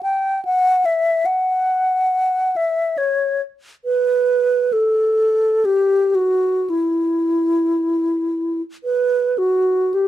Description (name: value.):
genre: classical, free, expressive piece for unaccompanied alto flute.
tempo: 47-73 BPM.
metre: 3/4.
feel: rubato.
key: E minor.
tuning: A4 = 439 Hz.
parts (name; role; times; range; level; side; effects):
alto flute; solo; 0.0-10.1 s; E4 to G5; -16 LUFS; equal; none.
room: light reverb.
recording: dark, warm production.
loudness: -16 LUFS.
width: side -13 dB against mid.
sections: 0.0-9.9 A section.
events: none.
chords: none.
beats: 0.46 | 1.28 2.14 2.99 | 3.85 4.75 5.67 | 6.71 7.81 8.83 | 9.93.